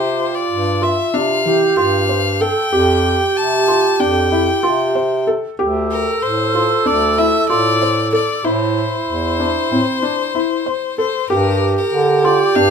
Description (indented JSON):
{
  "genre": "contemporary instrumental, chamber music in an uneven meter",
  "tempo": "189 BPM (eighths)",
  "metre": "9/8",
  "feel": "straight",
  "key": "C mixolydian",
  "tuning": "A4 = 439 Hz",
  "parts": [
    { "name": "clear violin", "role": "melody", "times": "0.0-12.7 s", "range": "Bb4 to A5", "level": "-20 LUFS", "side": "left 6 dB", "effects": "none" },
    { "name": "long shakuhachi", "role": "second line", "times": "0.0-12.7 s", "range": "E4 to A4", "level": "-19 LUFS", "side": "right 6 dB", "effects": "none" },
    { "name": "felt-muted upright piano", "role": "arpeggios", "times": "0.0-12.7 s", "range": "E3 to C5", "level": "-20 LUFS", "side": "left 2 dB", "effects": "none" },
    { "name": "warm bass clarinet", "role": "bass", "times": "0.0-12.7 s", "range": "D2 to D3", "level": "-20 LUFS", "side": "equal", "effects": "none" }
  ],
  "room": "light reverb",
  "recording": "minimal, uncompressed stereo recording",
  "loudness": "-14 LUFS",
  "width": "side -6 dB against mid",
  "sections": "0.0-11.3 A section; 11.3-12.7 B section",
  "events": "none",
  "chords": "0.0 Csus4; 2.7 Fadd9; 5.6 Dm; 8.4 Am; 11.3 Gm7"
}